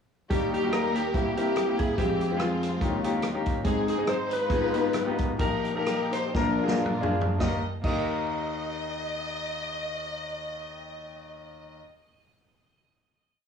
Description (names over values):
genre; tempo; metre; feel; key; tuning
uptempo gospel; 107-144 BPM; 4/4; swing 55% on 8ths; Eb major; A4 = 440 Hz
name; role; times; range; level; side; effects
dark studio string section; melody; 0.3-11.8 s; Ab3 to Eb5; -32 LUFS; left 3 dB; none
electric slide guitar; melody; 0.3-11.8 s; F4 to Eb5; -32 LUFS; right 1 dB; tape echo
clear grand piano; accompaniment; 0.3-11.8 s; F1 to Bb4; -30 LUFS; left 1 dB; none
swinging big-band drum kit; drums; 0.3-8.0 s; crash cymbal, hi-hat, kick drum, rim click, snare drum, toms; -31 LUFS; equal; none
room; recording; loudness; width
moderate large studio reverb, RT60 1.2 s; worn, warbling old tape, cassette tape, warbly pitch drift, small room ambience; -25 LUFS; side -7 dB against mid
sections
0.3-7.4 breakdown; 7.4-11.9 final chord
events
slowing down 3.7-7.4; drum fill 6.3-7.4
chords
0.3 Eb; 1.1 C7; 2.0 Fm; 2.8 Eb7; 3.7 Ab; 4.5 Abm6; 5.4 Eb/Bb; 6.3 Bb; 7.4 Eb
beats
| 0.30 0.72 1.14 1.56 | 1.98 2.40 2.81 3.23 | 3.65 4.07 4.50 4.94 | 5.39 5.86 6.35 6.86 | 7.40 7.96 8.53 9.09 | 9.65 10.21 10.77 11.32